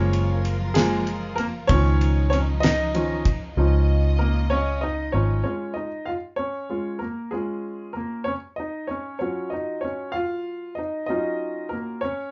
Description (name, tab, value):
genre	six-eight pop ballad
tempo	64 BPM (dotted quarters)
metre	6/8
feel	straight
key	Db major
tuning	A4 = 440 Hz
part	bright upright piano	accompaniment	0.0-12.3 s	Eb3 to F5	-28 LUFS	equal	none
part	warm studio string section	sustained chords	0.0-5.4 s	F3 to Eb5	-35 LUFS	equal	none
part	vintage muted fingered electric bass	bass	0.0-5.4 s	Gb1 to Db2	-24 LUFS	equal	none
part	damped 70s drum kit	drums	0.1-3.4 s	kick drum, ride cymbal, snare drum	-27 LUFS	equal	none
room	moderate studio ambience, RT60 0.5 s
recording	band playing live in one room, nothing above 7.5 kHz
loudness	-24 LUFS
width	mono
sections	0.0-3.6 A section; 3.6-5.4 B section; 5.4-12.3 C section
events	upright piano solo 0.0-3.6, 3.6-5.4, 5.4-12.3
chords	0.0 Gbmaj7; 1.7 Dbadd9; 9.2 Ebm7